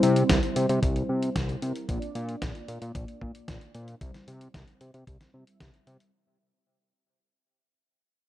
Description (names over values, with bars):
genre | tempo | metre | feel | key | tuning
italo disco | 113 BPM | 4/4 | straight | unclear | A4 = 440 Hz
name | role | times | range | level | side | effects
mellow synth brass | stabs | 0.0-6.1 s | G3 to E5 | -28 LUFS | left 1 dB | chorus, tape echo
fat analog bass | bass | 0.0-6.0 s | Bb1 to C3 | -29 LUFS | equal | none
dusty soul sampler-style drum kit | drums | 0.0-6.1 s | hi-hat, snare drum | -31 LUFS | right 1 dB | none
electronic kick drum | drums | 0.3-5.7 s | none | -31 LUFS | equal | none
room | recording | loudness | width
digital ambience | dry, close 1970s-style studio recording | -25 LUFS | side -13 dB against mid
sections
0.0-6.1 A section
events
fade-out 0.0-6.1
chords
0.0 C; 1.9 Bb; 4.0 C